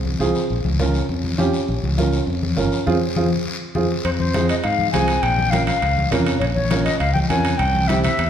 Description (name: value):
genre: latin, cumbia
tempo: 203 BPM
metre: 4/4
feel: straight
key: unclear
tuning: A4 = 440 Hz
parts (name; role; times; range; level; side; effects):
- fingered electric bass; bass; 0.0-8.3 s; G1 to Ab2; -22 LUFS; equal; none
- congas; percussion; 0.1-8.3 s; none; -25 LUFS; left 4 dB; none
- dark upright piano; accompaniment; 0.2-8.1 s; C4 to Bb4; -23 LUFS; right 4 dB; none
- guiro; percussion; 0.2-8.3 s; none; -32 LUFS; left 5 dB; none
- reedy concert flute; melody; 4.0-8.3 s; C5 to Ab5; -21 LUFS; left 3 dB; none
- timbales; percussion; 4.0-8.3 s; none; -29 LUFS; right 5 dB; none
room: wet recital hall reverb, RT60 1.5 s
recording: recorded in a church or concert hall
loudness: -17 LUFS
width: side -9 dB against mid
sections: 0.0-4.0 A section; 4.0-8.3 B section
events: band accent 2.9-4.0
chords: 0.5 Bbm; 2.9 Fm; 5.2 Bbm; 7.6 C